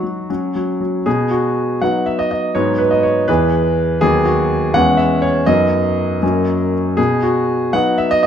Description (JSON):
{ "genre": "classical-period piano sonatina", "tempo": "80 BPM (dotted quarters)", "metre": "6/8", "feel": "rubato", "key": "B major", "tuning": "A4 = 439 Hz", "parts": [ { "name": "clear grand piano", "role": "solo", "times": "0.0-8.3 s", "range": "D#2 to F#5", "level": "-14 LUFS", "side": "equal", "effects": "none" } ], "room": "wet stone room reverb, RT60 1.0 s", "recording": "none", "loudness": "-14 LUFS", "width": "side -8 dB against mid", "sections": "0.0-1.1 A section; 1.1-8.3 B section", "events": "none", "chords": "0.3 F#5; 1.1 B; 2.5 G#m7; 3.3 E; 4.0 B/D#; 4.7 C#m7/E; 5.5 B/F#; 6.2 F#; 7.0 B" }